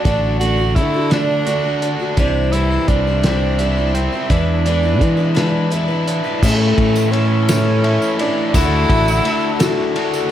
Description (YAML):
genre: folk rock and heartland rock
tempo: 56 BPM (dotted quarters)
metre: 6/8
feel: straight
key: unclear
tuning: A4 = 439 Hz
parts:
  - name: clear tenor saxophone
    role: melody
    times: 0.0-10.0 s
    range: A3 to F#4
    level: -21 LUFS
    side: right 2 dB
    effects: slapback echo
  - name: picked twelve-string acoustic guitar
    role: accompaniment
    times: 0.0-10.3 s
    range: A2 to C5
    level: -22 LUFS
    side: left 6 dB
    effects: none
  - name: biting overdriven guitar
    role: riff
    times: 0.0-10.3 s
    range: E2 to F#4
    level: -22 LUFS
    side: right 1 dB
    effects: none
  - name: fingered electric bass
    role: bass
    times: 0.1-9.2 s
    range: A1 to E3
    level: -18 LUFS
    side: equal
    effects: none
  - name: cloth-damped thuddy drum kit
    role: drums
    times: 0.1-10.1 s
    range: crash cymbal, hi-hat, kick drum, ride cymbal, snare drum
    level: -20 LUFS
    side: equal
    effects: none
  - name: mellow tonewheel organ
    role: sustained chords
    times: 6.4-10.3 s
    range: A4 to E6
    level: -32 LUFS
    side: right 1 dB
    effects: none
  - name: tambourine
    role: percussion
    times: 6.4-10.3 s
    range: none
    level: -32 LUFS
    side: right 5 dB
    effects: none
room: small room reverb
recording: none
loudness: -14 LUFS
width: side -11 dB against mid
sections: 0.0-6.4 A section; 6.4-10.3 B section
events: none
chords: 0.0 D; 2.2 C; 4.3 E7; 6.4 A; 8.5 Dadd9